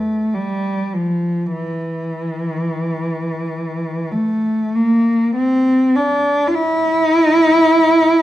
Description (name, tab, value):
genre	classical, free, expressive piece for unaccompanied cello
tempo	40-54 BPM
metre	4/4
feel	rubato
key	unclear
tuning	A4 = 437 Hz
part	rich cello	solo	0.0-8.2 s	E3 to F4	-14 LUFS	equal	none
room	wet recital hall reverb, RT60 1.4 s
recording	dark, warm production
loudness	-15 LUFS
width	side -14 dB against mid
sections	0.0-8.2 A section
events	none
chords	none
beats	0.36 1.55 2.73 | 4.14 5.37 6.54 7.70